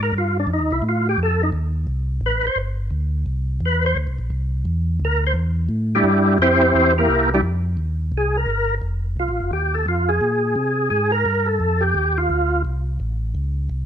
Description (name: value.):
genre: jazz.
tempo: 172 BPM.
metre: 4/4.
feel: swing 63% on 8ths.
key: F major.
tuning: A4 = 440 Hz.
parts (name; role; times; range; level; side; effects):
percussive tonewheel organ; melody; 0.0-12.6 s; G3 to C5; -18 LUFS; equal; slow rotary speaker, overdrive, chorus vibrato.
mellow tonewheel organ; bass; 0.0-13.9 s; F1 to C3; -21 LUFS; equal; overdrive, chorus vibrato, slow rotary speaker.
room: moderate studio reverb, RT60 0.8 s.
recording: none.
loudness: -18 LUFS.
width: side -9 dB against mid.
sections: 0.0-8.8 A section; 8.8-13.9 B section.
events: tonewheel organ solo 0.0-8.8.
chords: 0.5 F9; 3.3 C9; 7.4 Ebsus2; 8.1 C5; 8.8 F7; 10.2 Bbsus2; 11.6 F9.